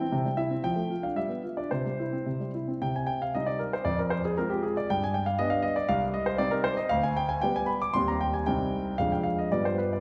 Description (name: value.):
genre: classical-period piano sonatina.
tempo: 116 BPM.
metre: 2/4.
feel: rubato.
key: C minor.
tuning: A4 = 439 Hz.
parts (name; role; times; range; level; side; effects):
clear grand piano; solo; 0.0-10.0 s; C2 to D6; -28 LUFS; equal; none.
room: wet recital hall reverb, RT60 1.7 s.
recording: heard from further back in the room, nothing above 10.3 kHz.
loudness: -28 LUFS.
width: mono.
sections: 0.0-2.8 A section; 2.8-10.0 B section.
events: none.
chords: 0.1 C; 0.7 Dm/F; 1.2 G7; 1.7 C; 2.8 Cm; 3.9 Fm; 4.9 G; 5.9 Cm; 6.9 G/D; 7.9 Cm/Eb; 8.5 Cm; 9.0 Ddim/F.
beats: 0.14 | 0.66 1.18 | 1.72 2.27 | 2.82 3.35 | 3.86 4.37 | 4.88 5.39 | 5.89 6.39 | 6.90 7.42 | 7.93 8.45 | 8.98 9.51.